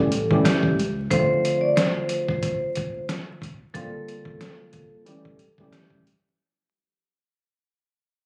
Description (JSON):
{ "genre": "hip hop, boom-bap hip-hop", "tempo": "91 BPM", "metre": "4/4", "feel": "swing 57% on 16ths", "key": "D minor", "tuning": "A4 = 439 Hz", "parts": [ { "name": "vibraphone with medium hard mallets", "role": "melody", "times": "0.0-6.0 s", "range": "G4 to D5", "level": "-28 LUFS", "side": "equal", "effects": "high-pass filter, low-pass filter, slapback echo" }, { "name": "tine electric piano", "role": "accompaniment", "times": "0.0-6.0 s", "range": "D3 to G4", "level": "-28 LUFS", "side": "equal", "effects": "high-pass filter, low-pass filter" }, { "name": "deep dub fingered electric bass", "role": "bass", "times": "0.0-1.1 s", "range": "A1 to C#2", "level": "-29 LUFS", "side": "equal", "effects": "none" }, { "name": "trip hop sampler-style drum kit", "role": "drums", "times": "0.1-6.2 s", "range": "hi-hat, kick drum, snare drum", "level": "-28 LUFS", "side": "equal", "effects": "none" } ], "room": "light reverb", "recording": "recorded on a phone in the room, club reverb, vinyl crackle", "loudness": "-23 LUFS", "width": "mono", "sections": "0.0-6.4 A section", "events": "fade-out 0.0-6.4", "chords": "0.0 A7; 1.1 Dm7; 3.7 C9sus4; 5.1 A7" }